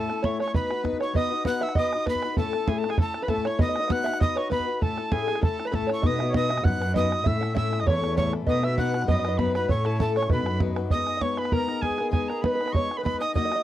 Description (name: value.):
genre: celtic folk, Celtic reel.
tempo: 197 BPM.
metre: 4/4.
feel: swing 53% on 8ths.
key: B mixolydian.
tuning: A4 = 439 Hz.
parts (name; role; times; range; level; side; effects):
bright wooden whistle; melody; 0.0-13.6 s; G#5 to F#6; -30 LUFS; right 3 dB; none.
accordion; second line; 0.0-13.6 s; G#4 to F#5; -33 LUFS; left 2 dB; none.
open-back banjo; second line; 0.0-13.6 s; G#4 to F#5; -31 LUFS; right 5 dB; none.
picked swing-style acoustic guitar; accompaniment; 0.0-13.6 s; A2 to B4; -29 LUFS; left 7 dB; none.
bodhran; percussion; 0.1-13.6 s; none; -26 LUFS; right 2 dB; none.
warm cello; bass; 6.0-10.8 s; E2 to B2; -27 LUFS; equal; none.
room: moderate booth ambience, RT60 0.2 s.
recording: dry, close 1970s-style studio recording.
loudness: -23 LUFS.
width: side -13 dB against mid.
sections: 0.0-1.1 A section; 1.1-10.9 A section; 10.9-13.6 B section.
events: none.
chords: 0.0 A; 0.5 B; 2.4 A; 3.6 B; 4.8 A; 6.0 B; 7.3 A; 8.5 B; 9.7 A; 10.3 B; 10.9 G#m.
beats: 0.23 0.54 0.84 | 1.15 1.46 1.76 2.07 | 2.37 2.68 2.98 3.29 | 3.59 3.90 4.20 4.51 | 4.81 5.12 5.42 5.73 | 6.03 6.34 6.64 6.95 | 7.25 7.56 7.86 8.17 | 8.47 8.78 9.08 9.39 | 9.69 10.00 10.30 10.61 | 10.91 11.22 11.52 11.83 | 12.13 12.44 12.74 13.05 | 13.36.